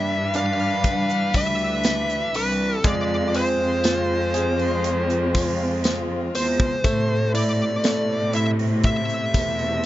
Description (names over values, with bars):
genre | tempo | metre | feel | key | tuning
pop ballad | 60 BPM | 4/4 | straight | unclear | A4 = 438 Hz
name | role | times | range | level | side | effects
smooth overdriven lead guitar | melody | 0.0-9.9 s | B4 to F5 | -24 LUFS | equal | none
clear grand piano | accompaniment | 0.0-9.9 s | G3 to Ab4 | -28 LUFS | right 2 dB | none
warm studio string section | sustained chords | 0.0-9.9 s | B2 to B4 | -28 LUFS | left 2 dB | none
dark studio cello section | bass | 0.0-9.9 s | C2 to A2 | -26 LUFS | equal | none
modern studio drum kit | drums | 0.3-9.8 s | hi-hat, kick drum, snare drum | -25 LUFS | equal | none
tambourine | percussion | 0.3-9.6 s | none | -34 LUFS | left 7 dB | none
room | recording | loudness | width
small room ambience | nothing above 7.6 kHz | -19 LUFS | side -14 dB against mid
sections
0.0-9.9 A section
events
none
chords
0.0 G6; 2.8 Fm; 6.8 Amadd9